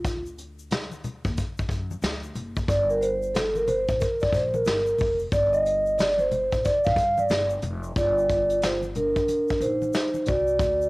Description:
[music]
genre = hip hop, jazz-hop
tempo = 91 BPM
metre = 4/4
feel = swing 63% on 16ths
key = G minor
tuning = A4 = 438 Hz
[part]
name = vibraphone with soft mallets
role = accompaniment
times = 0.0-10.9 s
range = D4 to F5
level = -22 LUFS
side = right 1 dB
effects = cassette tape
[part]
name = upright bass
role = bass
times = 0.0-10.9 s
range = F1 to G2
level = -33 LUFS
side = left 1 dB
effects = none
[part]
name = vintage brush drum kit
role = drums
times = 0.0-10.8 s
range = hi-hat, kick drum, snare drum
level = -28 LUFS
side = left 1 dB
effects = cassette tape
[part]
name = tube shaker and congas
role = percussion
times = 0.1-10.9 s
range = none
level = -38 LUFS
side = left 3 dB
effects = none
[sound]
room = light reverb, small room ambience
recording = home recording on cassette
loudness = -22 LUFS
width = side -23 dB against mid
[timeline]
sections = 0.0-8.0 A section; 8.0-10.9 B section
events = vibraphone solo 0.0-8.0, 8.0-10.9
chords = 0.0 D; 2.7 Gm7

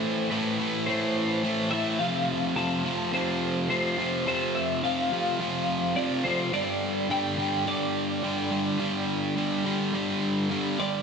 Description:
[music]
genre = rock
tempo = 106 BPM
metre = 4/4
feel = straight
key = unclear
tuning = A4 = 440 Hz
[part]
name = clean electric guitar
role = melody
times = 0.0-11.0 s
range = B4 to A5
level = -30 LUFS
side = equal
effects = analog chorus, slapback echo
[part]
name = cranked stack guitar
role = riff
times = 0.0-11.0 s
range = F2 to A3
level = -26 LUFS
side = equal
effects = overdrive
[sound]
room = wet lush hall reverb, RT60 3.3 s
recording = big arena sound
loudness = -24 LUFS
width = side -5 dB against mid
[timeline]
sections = 0.0-11.0 A section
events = none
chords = 0.0 Am; 2.0 F; 6.5 G5

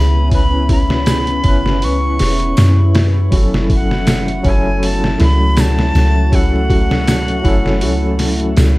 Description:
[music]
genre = trip hop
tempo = 80 BPM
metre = 4/4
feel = swing 55% on 16ths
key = F# minor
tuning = A4 = 441 Hz
[part]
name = breathy bright concert flute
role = melody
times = 0.0-8.6 s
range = F#5 to C#6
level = -22 LUFS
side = equal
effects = tape echo
[part]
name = overdriven tine electric piano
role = accompaniment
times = 0.0-8.8 s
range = F#3 to B4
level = -20 LUFS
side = equal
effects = tremolo, tape echo
[part]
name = deep dark ambient pad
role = sustained chords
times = 0.0-8.8 s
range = A3 to F#4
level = -24 LUFS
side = left 1 dB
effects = chorus, built-in reverb, vintage 12-bit sampler grit
[part]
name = felt-muted upright piano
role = arpeggios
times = 0.0-8.8 s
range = E4 to B4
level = -27 LUFS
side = right 1 dB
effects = none
[part]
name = soft 808-style bass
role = bass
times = 0.0-8.8 s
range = E1 to F#2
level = -15 LUFS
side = equal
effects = none
[part]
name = trip hop sampler-style drum kit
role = drums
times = 0.3-8.8 s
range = hi-hat, kick drum, snare drum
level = -16 LUFS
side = equal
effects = none
[part]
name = tambourine and triangle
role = percussion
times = 1.1-8.7 s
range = none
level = -34 LUFS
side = left 2 dB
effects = none
[sound]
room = small room ambience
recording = vinyl crackle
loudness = -11 LUFS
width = side -19 dB against mid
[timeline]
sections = 0.0-8.8 A section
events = none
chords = 0.0 C#m7; 3.3 F#m7

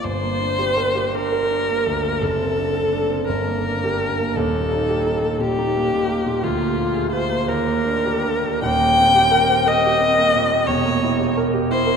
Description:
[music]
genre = classical, romantic duo for viola and grand piano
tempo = 50-59 BPM (dotted quarters)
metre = 6/8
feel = rubato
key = G minor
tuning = A4 = 438 Hz
[part]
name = warm viola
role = melody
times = 0.0-12.0 s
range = F4 to G5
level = -19 LUFS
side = left 1 dB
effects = none
[part]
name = warm concert grand piano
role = accompaniment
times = 0.0-12.0 s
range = Eb1 to C5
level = -21 LUFS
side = right 2 dB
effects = none
[sound]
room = wet cathedral reverb, RT60 5.2 s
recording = in a vast, echoing space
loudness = -17 LUFS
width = side -6 dB against mid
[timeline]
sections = 0.1-12.0 A section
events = none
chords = 0.1 Gm; 2.2 D7/F#; 3.3 Gm; 4.4 Eb; 6.4 Bb7/D; 7.5 Ebmaj7; 8.6 Cm7/Eb; 10.7 Edim7

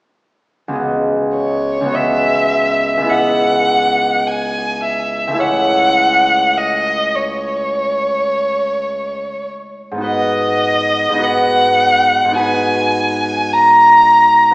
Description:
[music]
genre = classical, impressionist duo for violin and harp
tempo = 52 BPM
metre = 4/4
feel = rubato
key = C# minor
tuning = A4 = 442 Hz
[part]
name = concert harp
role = accompaniment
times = 0.7-14.5 s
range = C#2 to D#5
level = -18 LUFS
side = equal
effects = none
[part]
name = clear violin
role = melody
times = 1.4-14.5 s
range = C#5 to A#5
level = -13 LUFS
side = equal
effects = none
[sound]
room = wet scoring stage reverb, RT60 1.6 s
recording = heard from further back in the room, small speaker sound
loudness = -12 LUFS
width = side -25 dB against mid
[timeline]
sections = 0.8-14.5 A section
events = none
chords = 0.8 C#m11; 3.1 Emaj9/C#; 10.1 G#m7

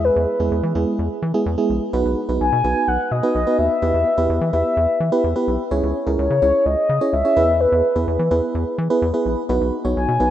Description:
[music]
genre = synth-pop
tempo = 127 BPM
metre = 4/4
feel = straight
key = unclear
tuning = A4 = 440 Hz
[part]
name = mellow horn-like synth lead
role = melody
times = 0.0-10.3 s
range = B4 to G#5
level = -20 LUFS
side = left 2 dB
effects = chorus, analog delay
[part]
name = FM electric piano with tremolo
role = accompaniment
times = 0.0-10.3 s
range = G#3 to C#5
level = -21 LUFS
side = right 2 dB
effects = none
[part]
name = rubbery square bass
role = bass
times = 0.0-10.3 s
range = A#1 to E3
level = -22 LUFS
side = equal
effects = none
[sound]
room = wet lush hall reverb, RT60 3.0 s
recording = rough home demo mix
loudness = -17 LUFS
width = side -11 dB against mid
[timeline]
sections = 0.0-10.3 A section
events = none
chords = 0.0 E; 1.9 B; 3.8 Em; 5.7 C#madd9; 7.4 E; 9.5 B

